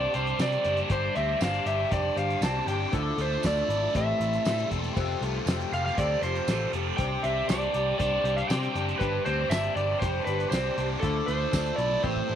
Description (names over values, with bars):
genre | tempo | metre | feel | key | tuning
folk rock and heartland rock | 119 BPM | 4/4 | straight | C major | A4 = 440 Hz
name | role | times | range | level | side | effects
overdriven slide guitar | melody | 0.0-12.4 s | A4 to A5 | -29 LUFS | right 1 dB | none
picked swing-style acoustic guitar | accompaniment | 0.0-12.4 s | A2 to C5 | -36 LUFS | left 11 dB | none
mellow tonewheel organ | sustained chords | 0.0-12.4 s | F4 to D6 | -39 LUFS | equal | slow rotary speaker, chorus vibrato
overdriven electric guitar | riff | 0.0-12.4 s | G2 to G4 | -31 LUFS | equal | phaser
picked electric bass | bass | 0.0-12.4 s | E1 to C3 | -31 LUFS | equal | none
cloth-damped thuddy drum kit | drums | 0.1-12.3 s | crash cymbal, hi-hat, kick drum, snare drum | -31 LUFS | equal | none
tambourine | percussion | 0.4-11.6 s | none | -42 LUFS | right 12 dB | none
room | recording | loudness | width
light reverb | 1960s-style stereo with parts hard left and right | -24 LUFS | side -9 dB against mid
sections
0.0-12.4 A section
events
drum fill 12.0-12.4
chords
0.0 Csus2; 0.9 Gsus4; 2.9 Dmadd9; 3.9 Am7; 5.0 Fadd9; 7.0 Csus2; 9.0 Gsus4; 11.0 Dmadd9